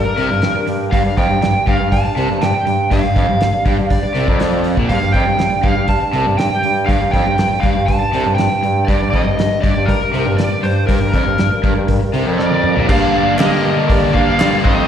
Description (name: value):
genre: classic rock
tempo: 120 BPM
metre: 4/4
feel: straight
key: G minor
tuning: A4 = 441 Hz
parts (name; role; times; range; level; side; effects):
- lead guitar through a small cranked amp; melody; 0.0-14.9 s; Bb4 to A5; -18 LUFS; right 1 dB; wah, overdrive, slapback echo
- crunchy overdriven guitar; riff; 0.0-14.9 s; F2 to D4; -20 LUFS; left 6 dB; slapback echo
- distorted electric guitar; riff; 0.0-14.9 s; F2 to D4; -21 LUFS; right 7 dB; distortion, slapback echo
- mellow bassoon; bass; 0.0-14.8 s; Bb1 to G2; -21 LUFS; equal; none
- cloth-damped thuddy drum kit; drums; 0.2-14.8 s; crash cymbal, hi-hat, kick drum, snare drum, toms; -18 LUFS; equal; none
- biting lead guitar; second line; 12.4-14.9 s; Bb4 to D5; -25 LUFS; right 3 dB; overdrive, slapback echo
- group handclap; percussion; 13.4-14.5 s; none; -28 LUFS; left 2 dB; none
room: little or no reverb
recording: live gig heard through the venue's PA, recital hall reverb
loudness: -13 LUFS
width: side -9 dB against mid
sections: 0.0-12.9 A section; 12.9-14.9 B section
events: drum fill 12.4-12.9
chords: 0.0 Gm